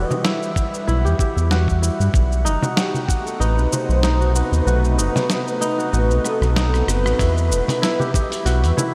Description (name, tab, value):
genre	organic downtempo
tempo	95 BPM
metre	4/4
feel	swing 55% on 16ths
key	E harmonic minor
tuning	A4 = 440 Hz
part	breathy flute-like synth lead	melody	0.0-8.9 s	G4 to E5	-28 LUFS	equal	ensemble chorus, cassette tape, delay, shimmer reverb
part	bowed-like drone	sustained chords	0.0-8.9 s	C3 to F#5	-31 LUFS	equal	built-in reverb, sidechain pumping, shimmer reverb
part	kora	arpeggios	0.0-8.9 s	B3 to F#5	-27 LUFS	equal	low-pass filter, tape echo, shimmer reverb
part	round analog bass	bass	0.0-8.7 s	E1 to G2	-20 LUFS	equal	none
part	dusty soul sampler-style drum kit	drums	0.1-8.9 s	hi-hat, rim click, shaker, snare drum	-29 LUFS	equal	none
part	frame drum	percussion	0.1-8.9 s	none	-29 LUFS	equal	none
part	electronic kick drum	drums	0.6-3.2, 7.2-8.3 s	none	-22 LUFS	equal	none
room	moderate huge ambient reverb, RT60 8.3 s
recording	dreamy mix soaked in reverb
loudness	-19 LUFS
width	mono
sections	0.0-7.2 A section; 7.2-8.9 B section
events	kick drops out 4.7-7.2; drum fill 6.2-7.2; band accent 7.0-7.4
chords	0.0 Emadd9; 2.1 B7b9; 7.2 Emadd9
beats	0.25 0.88 1.51 | 2.14 2.77 3.40 4.04 | 4.67 5.30 5.93 6.56 | 7.19 7.83 8.46